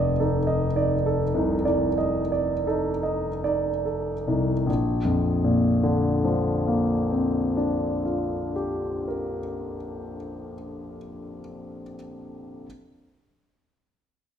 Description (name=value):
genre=classical, impressionist solo piano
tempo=34-56 BPM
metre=4/4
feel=rubato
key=Bb major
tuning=A4 = 440 Hz
part: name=warm concert grand piano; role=solo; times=0.0-12.7 s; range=F1 to Eb5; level=-23 LUFS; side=equal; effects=none
room=moderate recital hall reverb, RT60 1.4 s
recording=minimal, uncompressed stereo recording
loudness=-22 LUFS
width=side -8 dB against mid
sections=0.0-4.7 A section; 4.7-10.5 B section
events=slowing down 0.0-4.7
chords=0.0 F6; 4.7 Bb69